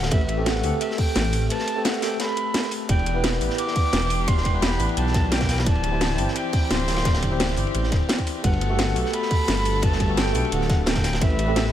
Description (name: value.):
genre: liquid drum and bass.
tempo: 173 BPM.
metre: 4/4.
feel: straight.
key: G major.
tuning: A4 = 438 Hz.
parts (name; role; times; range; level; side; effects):
jazz flute; melody; 0.0-11.7 s; E5 to D6; -29 LUFS; equal; dub echo.
tine electric piano; accompaniment; 0.0-11.7 s; A3 to D5; -28 LUFS; equal; medium stereo tremolo, dub echo.
dark detuned saw bass; bass; 0.0-11.7 s; D1 to D2; -24 LUFS; equal; none.
crunchy breakbeat drum kit; drums; 0.0-11.7 s; hi-hat, ride cymbal, snare drum; -31 LUFS; equal; high-pass filter on cymbals, high-pass filter on hats, high-pass filter on snare, high-pass filter on room.
electronic kick drum; drums; 0.1-11.3 s; none; -22 LUFS; equal; none.
garage drum kit; drums; 0.1-11.6 s; hi-hat, snare drum; -26 LUFS; equal; none.
warm studio string section; sustained chords; 2.9-11.7 s; E3 to B4; -32 LUFS; left 2 dB; sidechain pumping.
room: studio reverb.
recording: none.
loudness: -20 LUFS.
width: side -11 dB against mid.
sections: 0.0-11.7 A section.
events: break 1.5-2.9.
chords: 0.1 Am9; 2.9 Em7; 5.7 D9sus4; 8.4 Gmaj9; 11.2 Am9.